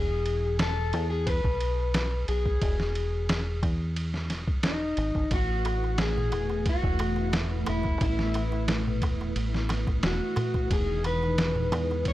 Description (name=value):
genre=trip hop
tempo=89 BPM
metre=4/4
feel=straight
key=unclear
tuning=A4 = 436 Hz
part: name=electric guitar at the edge of break-up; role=melody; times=0.0-12.1 s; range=D#4 to C#5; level=-31 LUFS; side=left 2 dB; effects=tape echo
part: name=deep dub fingered electric bass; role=bass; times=0.0-12.1 s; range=E1 to E2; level=-29 LUFS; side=equal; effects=none
part: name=trip hop sampler-style drum kit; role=drums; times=0.3-12.1 s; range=kick drum, ride cymbal, snare drum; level=-30 LUFS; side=equal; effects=none
part: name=string machine, cellos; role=sustained chords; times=5.3-12.1 s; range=E3 to B4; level=-33 LUFS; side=equal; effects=ensemble chorus
part: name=darbuka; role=percussion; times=5.3-12.1 s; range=none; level=-35 LUFS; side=right 1 dB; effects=none
room=digital ambience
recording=dry, gritty hardware recording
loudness=-25 LUFS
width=side -15 dB against mid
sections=0.0-12.1 A section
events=none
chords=0.0 E; 5.3 Asus2; 10.7 Emaj7